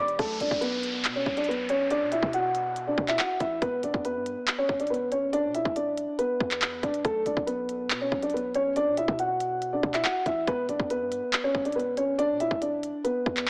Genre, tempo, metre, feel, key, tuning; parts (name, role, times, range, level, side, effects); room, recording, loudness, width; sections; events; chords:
hip hop, drill; 140 BPM; 4/4; half-time; B minor; A4 = 440 Hz
dark concert grand piano; melody; 0.0-13.5 s; A3 to D6; -29 LUFS; equal; tape echo
hard-hitting 808-style bass; bass; 0.0-13.5 s; E1 to B2; -42 LUFS; equal
drill drum kit; drums; 0.1-13.5 s; handclaps, hi-hat, kick drum; -32 LUFS; equal
downlifter; sound effects; 0.2-3.6 s; -38 LUFS; equal
light reverb, digital ambience; small speaker sound; -28 LUFS; mono
0.2-13.5 A section
0.2 Bm; 3.6 E7(no3); 7.0 Bm; 10.5 E7(no3)